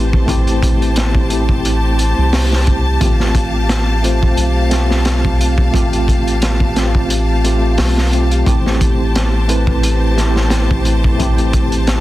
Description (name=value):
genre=trip hop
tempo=88 BPM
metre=4/4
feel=swing 55% on 16ths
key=A minor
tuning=A4 = 440 Hz
part: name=mellow tine electric piano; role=accompaniment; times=0.0-12.0 s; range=A3 to C5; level=-19 LUFS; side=equal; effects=medium stereo tremolo, tape echo
part: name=clear studio string section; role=sustained chords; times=0.0-12.0 s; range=G4 to A5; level=-22 LUFS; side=left 1 dB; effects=none
part: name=round analog bass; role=bass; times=0.0-12.0 s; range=A1 to C2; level=-16 LUFS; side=equal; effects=none
part: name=crunchy breakbeat drum kit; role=drums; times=0.1-12.0 s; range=hi-hat, kick drum, snare drum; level=-17 LUFS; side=equal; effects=none
room=small room ambience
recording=dense, heavily limited modern master, vinyl crackle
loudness=-12 LUFS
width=side -16 dB against mid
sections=0.0-12.0 A section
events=none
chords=0.0 Am7; 3.0 Fadd9/A; 8.5 Am7